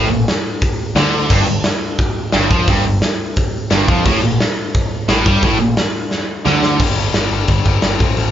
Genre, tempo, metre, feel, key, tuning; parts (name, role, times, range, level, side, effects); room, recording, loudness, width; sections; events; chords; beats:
punk rock; 175 BPM; 4/4; straight; A4 = 440 Hz
biting overdriven guitar; riff; 0.0-6.8 s; G2 to G3; -23 LUFS; equal
distorted electric guitar; riff; 0.0-6.8 s; G2 to G3; -20 LUFS; right 7 dB; overdrive
tight distorted guitar; riff; 0.0-8.3 s; F2 to G3; -20 LUFS; left 7 dB; distortion
growling picked electric bass; bass; 0.0-8.3 s; G1 to G2; -20 LUFS; equal; overdrive
big rock drum kit; drums; 0.3-8.3 s; crash cymbal, hi-hat, kick drum, snare drum; -16 LUFS; equal
light reverb; band playing live in one room, nothing above 7.5 kHz; -13 LUFS; side -10 dB against mid
0.0-6.8 A section; 6.8-8.3 B section
drum fill 6.1-6.8
0.0 Gmadd9/A (rootless); 1.3 Fsus2/G; 4.1 Gmadd9/A; 6.8 G5
0.28 0.62 0.97 | 1.31 1.65 2.00 2.34 | 2.68 3.03 3.37 3.71 | 4.06 4.40 4.74 5.09 | 5.43 5.78 6.12 6.46 | 6.81 7.15 7.49 7.84 | 8.18